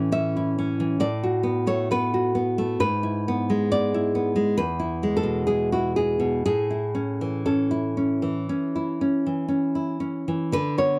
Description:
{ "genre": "romantic piece for solo classical guitar", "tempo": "58-68 BPM", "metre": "4/4", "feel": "rubato", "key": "A major", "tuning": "A4 = 439 Hz", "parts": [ { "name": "nylon-string guitar", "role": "solo", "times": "0.0-11.0 s", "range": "E2 to E5", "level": "-24 LUFS", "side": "equal", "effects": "none" } ], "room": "small room ambience", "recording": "dry, close 1970s-style studio recording", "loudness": "-24 LUFS", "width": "mono", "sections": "0.0-10.5 A section", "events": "none", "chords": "0.0 A; 1.0 B5/A; 2.8 E7/G#; 4.6 E; 6.5 A" }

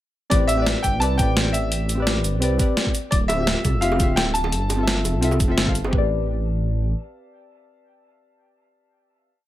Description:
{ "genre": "liquid drum and bass", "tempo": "171 BPM", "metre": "4/4", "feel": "swing 54% on 16ths", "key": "A minor", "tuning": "A4 = 439 Hz", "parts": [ { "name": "bright concert grand piano", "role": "melody", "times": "0.3-5.5 s", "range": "D5 to A5", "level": "-26 LUFS", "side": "equal", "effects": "dub echo" }, { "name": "deep mellow chord stab", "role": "accompaniment", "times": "0.3-9.4 s", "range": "C4 to F5", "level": "-25 LUFS", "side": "left 2 dB", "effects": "chorus" }, { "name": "dark detuned saw bass", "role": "bass", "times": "0.3-6.9 s", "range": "D1 to C2", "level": "-23 LUFS", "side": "equal", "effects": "none" }, { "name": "breakbeat sampler-style drum kit", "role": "drums", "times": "0.3-5.8 s", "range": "hi-hat, shaker, snare drum", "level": "-24 LUFS", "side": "equal", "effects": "none" }, { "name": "electronic kick drum", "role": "drums", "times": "0.3-6.0 s", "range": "none", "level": "-22 LUFS", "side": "equal", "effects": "none" }, { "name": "bongos", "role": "percussion", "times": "3.3-5.9 s", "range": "none", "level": "-31 LUFS", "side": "right 2 dB", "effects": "none" } ], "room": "digital ambience", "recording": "none", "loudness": "-18 LUFS", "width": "side -14 dB against mid", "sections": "0.3-5.9 drop; 5.9-8.7 final chord", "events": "drop 0.3-5.9", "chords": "0.3 Am11; 2.9 Dm11; 4.5 G13sus4; 5.9 Am11" }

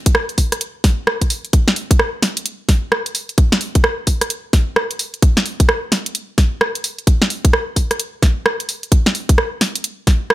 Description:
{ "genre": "UK garage", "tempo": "130 BPM", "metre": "4/4", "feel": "swing 62% on 16ths", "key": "none", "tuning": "none", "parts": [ { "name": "electronic kick drum", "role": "drums", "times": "0.1-10.2 s", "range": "none", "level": "-13 LUFS", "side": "equal", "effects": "studio reverb" }, { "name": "garage drum kit", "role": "drums", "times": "0.1-10.3 s", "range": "hi-hat, rim click, snare drum", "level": "-17 LUFS", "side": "equal", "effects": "studio reverb" } ], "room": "little or no reverb", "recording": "none", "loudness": "-15 LUFS", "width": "side -16 dB against mid", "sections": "0.0-10.3 A section", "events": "none", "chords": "none" }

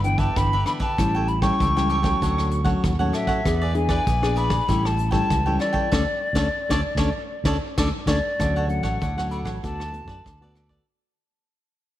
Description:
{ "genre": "samba and choro", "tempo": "97 BPM", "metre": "4/4", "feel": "straight", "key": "D major", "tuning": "A4 = 440 Hz", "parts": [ { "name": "hollow concert flute", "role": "melody", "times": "0.0-10.5 s", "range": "D5 to C#6", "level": "-26 LUFS", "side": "left 2 dB", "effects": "tape echo" }, { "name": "cavaquinho", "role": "accompaniment", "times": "0.0-10.9 s", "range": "D4 to G5", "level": "-30 LUFS", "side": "right 3 dB", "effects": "none" }, { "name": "nylon-string guitar", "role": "accompaniment", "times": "0.0-10.8 s", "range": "G2 to G#4", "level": "-27 LUFS", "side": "left 3 dB", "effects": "none" }, { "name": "fingered electric bass", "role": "bass", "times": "0.0-10.8 s", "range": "G1 to F#2", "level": "-24 LUFS", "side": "right 1 dB", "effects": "none" }, { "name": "vintage brush drum kit", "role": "drums", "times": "0.0-10.8 s", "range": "hi-hat, kick drum, rim click, snare drum", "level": "-27 LUFS", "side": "equal", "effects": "none" } ], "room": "light reverb, studio ambience", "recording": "none", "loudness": "-20 LUFS", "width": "side -13 dB against mid", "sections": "0.0-8.4 A section; 8.4-10.9 B section", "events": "band accent 5.9-8.4; fade-out 8.4-10.9", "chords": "0.0 G6; 1.0 A7; 2.2 Dmaj7; 3.5 E7; 4.7 A7; 5.9 D5; 8.4 Dmaj7; 9.6 Bm7/D" }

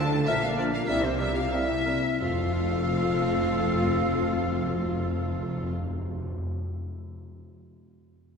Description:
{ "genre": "quick classical-period movement for symphony orchestra", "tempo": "85-104 BPM", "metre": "2/4", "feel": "rubato", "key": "F major", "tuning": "A4 = 440 Hz", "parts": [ { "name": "warm chamber violin section", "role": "melody", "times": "0.0-5.7 s", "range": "F4 to F5", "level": "-36 LUFS", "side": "left 1 dB", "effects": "none" }, { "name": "bright silver concert flute", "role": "second line", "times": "0.0-5.7 s", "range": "C5 to F5", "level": "-35 LUFS", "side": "left 1 dB", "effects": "none" }, { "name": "mellow clarinet", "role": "second line", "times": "0.0-5.7 s", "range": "C4 to D4", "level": "-37 LUFS", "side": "left 4 dB", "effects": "none" }, { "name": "mellow oboe", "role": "second line", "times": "0.0-5.7 s", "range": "A4 to Bb4", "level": "-36 LUFS", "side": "right 2 dB", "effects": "none" }, { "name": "warm studio violin section", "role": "second line", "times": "0.0-5.7 s", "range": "C5 to A5", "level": "-36 LUFS", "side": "left 3 dB", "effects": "none" }, { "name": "mellow bassoon", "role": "accompaniment", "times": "0.0-5.7 s", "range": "F3 to G3", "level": "-36 LUFS", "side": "right 2 dB", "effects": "none" }, { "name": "warm chamber viola section", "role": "accompaniment", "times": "0.0-5.7 s", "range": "A3 to G4", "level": "-34 LUFS", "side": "equal", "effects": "none" }, { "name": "dark French horn section", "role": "sustained chords", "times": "0.0-5.7 s", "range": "C4 to A4", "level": "-31 LUFS", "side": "left 5 dB", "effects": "none" }, { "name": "warm chamber double bass section", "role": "bass", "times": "0.0-5.7 s", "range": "F1 to D2", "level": "-32 LUFS", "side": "right 2 dB", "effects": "none" }, { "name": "warm studio cello section", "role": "bass", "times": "0.0-5.7 s", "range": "F2 to D3", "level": "-34 LUFS", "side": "right 1 dB", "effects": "none" }, { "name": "timpani", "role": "percussion", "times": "2.2-6.4 s", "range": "F2", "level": "-32 LUFS", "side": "equal", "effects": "none" } ], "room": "wet church reverb, RT60 3.0 s", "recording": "dark, warm production", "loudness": "-24 LUFS", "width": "side -5 dB against mid", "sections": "0.0-2.2 A section; 2.2-4.9 B section", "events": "slowing down 0.0-2.2", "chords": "0.3 Bb; 0.9 C7; 2.2 F" }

